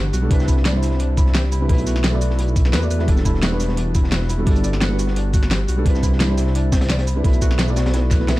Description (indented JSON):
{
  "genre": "liquid drum and bass",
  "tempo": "173 BPM",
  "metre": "4/4",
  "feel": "straight",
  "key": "unclear",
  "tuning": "A4 = 440 Hz",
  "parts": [
    { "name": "felt-muted upright piano", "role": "accompaniment", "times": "0.0-8.4 s", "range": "G3 to F#5", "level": "-25 LUFS", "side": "right 1 dB", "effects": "dub echo" },
    { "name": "concert harp", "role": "arpeggios", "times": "0.0-8.4 s", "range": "D4 to F#5", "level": "-30 LUFS", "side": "left 1 dB", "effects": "dub echo" },
    { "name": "dark detuned saw bass", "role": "bass", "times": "0.0-8.4 s", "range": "E1 to E2", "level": "-20 LUFS", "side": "equal", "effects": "none" },
    { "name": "crunchy breakbeat drum kit", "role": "drums", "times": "0.1-8.4 s", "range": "hi-hat, snare drum", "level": "-30 LUFS", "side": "equal", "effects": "high-pass filter on hats, high-pass filter on snare, high-pass filter on room" },
    { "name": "pop drum kit", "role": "drums", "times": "0.1-8.4 s", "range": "hi-hat, shaker, snare drum", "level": "-24 LUFS", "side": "equal", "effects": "none" },
    { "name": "electronic kick drum", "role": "drums", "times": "0.3-8.4 s", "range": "none", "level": "-17 LUFS", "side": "equal", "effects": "none" }
  ],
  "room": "small room ambience",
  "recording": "dark, warm production",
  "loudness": "-16 LUFS",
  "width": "side -18 dB against mid",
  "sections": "0.0-8.4 A section",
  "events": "drum fill 8.1",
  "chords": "0.3 Cmaj9; 1.7 B7sus4; 3.1 Em11; 4.5 Gmaj7; 5.9 Cmaj9; 7.2 B7sus4",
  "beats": "| 0.31 0.65 1.00 1.35 | 1.69 2.04 2.39 2.73 | 3.08 3.43 3.77 4.12 | 4.47 4.82 5.16 5.51 | 5.86 6.20 6.55 6.90 | 7.24 7.59 7.94 8.28"
}